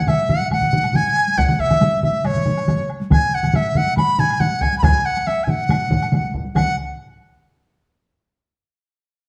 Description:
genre	japanese traditional, taiko drum ensemble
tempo	139 BPM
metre	4/4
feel	straight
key	F# suspended pentatonic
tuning	A4 = 439 Hz
part	bright reedy dizi	melody	0.0-6.8 s	C#5 to B5	-22 LUFS	equal	none
part	solo taiko drums	percussion	0.1-7.0 s	none	-23 LUFS	equal	none
part	taiko ensemble	percussion	0.1-6.8 s	none	-30 LUFS	equal	none
part	taiko ensemble	percussion	0.1-7.0 s	none	-30 LUFS	equal	none
part	woodblock	percussion	0.1-6.8 s	none	-36 LUFS	equal	none
part	taiko ensemble	percussion	1.4-6.8 s	none	-24 LUFS	equal	none
room	wet stone room reverb, RT60 1.1 s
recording	band playing live in one room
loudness	-18 LUFS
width	mono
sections	0.0-6.6 A section; 6.6-8.3 B section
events	none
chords	none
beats	0.08 0.51 0.94 | 1.38 1.81 2.25 2.68 | 3.11 3.54 3.97 4.41 | 4.83 5.27 5.70 6.12 | 6.55

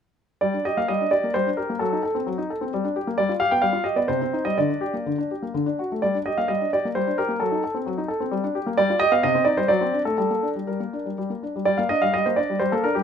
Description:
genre	classical-period piano sonatina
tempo	119-134 BPM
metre	3/4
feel	rubato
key	G minor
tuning	A4 = 440 Hz
part	warm concert grand piano	solo	0.4-13.0 s	C3 to G5	-21 LUFS	equal	none
room	light reverb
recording	minimal, uncompressed stereo recording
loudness	-21 LUFS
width	side -7 dB against mid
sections	0.4-11.7 A section; 11.7-13.0 A section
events	none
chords	0.4 Gm; 1.8 F#dim7; 2.7 Gm; 3.2 G7; 4.1 Cm; 4.6 Gm/D; 5.5 D; 6.0 Gm; 7.4 F#dim7; 8.3 Gm; 8.8 G7; 9.2 Cm; 9.7 D7/F#; 10.2 Gm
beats	| 0.42 0.89 1.35 | 1.81 2.27 2.72 | 3.17 3.62 4.09 | 4.57 5.05 5.53 | 6.02 6.49 6.95 | 7.41 7.87 8.33 | 8.78 9.23 9.70 | 10.18 10.67 11.17 | 11.67 12.14 12.61

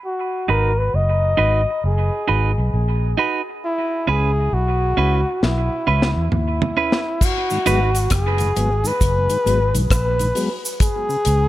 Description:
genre	dub reggae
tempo	67 BPM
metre	4/4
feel	swing 64% on 16ths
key	G# minor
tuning	A4 = 440 Hz
part	mellow flugelhorn	melody	0.1-11.5 s	E4 to D#5	-22 LUFS	left 1 dB	low-pass filter, dub echo
part	clean electric guitar	accompaniment	0.5-7.9 s	C#4 to B4	-24 LUFS	right 6 dB	high-pass filter, low-pass filter, dub echo
part	vintage muted fingered electric bass	bass	0.5-11.5 s	F#1 to E2	-19 LUFS	equal	none
part	deep reggae drum kit	drums	5.4-11.5 s	crash cymbal, hi-hat, kick drum, rim click, snare drum, toms	-21 LUFS	equal	none
part	cabasa	percussion	7.2-11.5 s	none	-31 LUFS	right 3 dB	none
part	mellow tonewheel organ	accompaniment	7.5-11.2 s	G#2 to B3	-26 LUFS	left 3 dB	slow rotary speaker, dub echo
room	light reverb, studio reverb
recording	none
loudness	-17 LUFS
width	side -15 dB against mid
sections	0.0-7.2 A section; 7.2-11.5 B section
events	filter sweep 0.0-7.2; drum fill 5.4-7.2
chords	0.0 G#m7; 3.6 C#m7; 7.2 G#m7; 10.8 C#5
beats	| 0.04 0.94 1.83 2.73 | 3.63 4.52 5.42 6.32 | 7.21 8.11 9.01 9.91 | 10.80

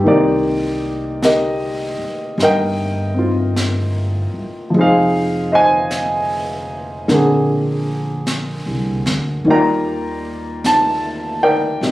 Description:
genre	jazz ballad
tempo	51 BPM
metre	4/4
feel	swing 66% on 8ths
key	unclear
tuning	A4 = 440 Hz
part	warm baby grand piano	accompaniment	0.0-11.9 s	D3 to Bb5	-16 LUFS	equal	none
part	upright bass	bass	0.0-11.9 s	F1 to Eb2	-23 LUFS	equal	none
part	jazz brush drum kit	drums	0.1-11.9 s	brushed snare drum, hi-hat, snare drum	-26 LUFS	equal	none
room	light reverb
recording	recorded on a phone in the room, studio reverb, compression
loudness	-15 LUFS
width	side -16 dB against mid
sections	0.0-11.9 A section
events	none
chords	0.1 Cm9; 4.7 Fm7; 7.1 Bb9; 9.5 Ebmaj9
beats	| 0.06 1.22 2.39 3.56 | 4.73 5.90 7.08 8.26 | 9.45 10.64 11.82

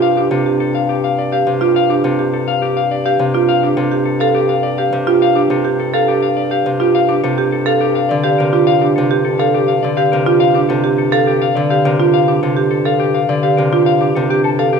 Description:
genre	classical, minimalist pattern music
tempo	104 BPM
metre	3/4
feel	straight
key	unclear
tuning	A4 = 440 Hz
part	clean electric guitar	melody	0.0-14.8 s	G4 to F5	-17 LUFS	left 6 dB	none
part	Celtic harp	accompaniment	0.0-14.8 s	C3 to D3	-20 LUFS	left 3 dB	none
part	marimba with medium hard mallets	arpeggios	0.0-14.8 s	D4 to A4	-16 LUFS	right 7 dB	none
part	mellow bassoon	bass	0.0-14.8 s	G2	-22 LUFS	left 1 dB	none
part	concert flute	arpeggios	14.4-14.5 s	A5	-23 LUFS	left 8 dB	none
room	moderate scoring stage reverb, RT60 2.0 s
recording	minimal, uncompressed stereo recording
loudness	-12 LUFS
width	side -6 dB against mid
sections	0.0-14.8 A section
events	none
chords	0.0 G7sus2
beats	| 0.02 0.60 1.18 | 1.75 2.33 2.91 | 3.48 4.06 4.64 | 5.22 5.79 6.37 | 6.95 7.52 8.10 | 8.68 9.25 9.83 | 10.41 10.98 11.56 | 12.14 12.72 13.29 | 13.87 14.45

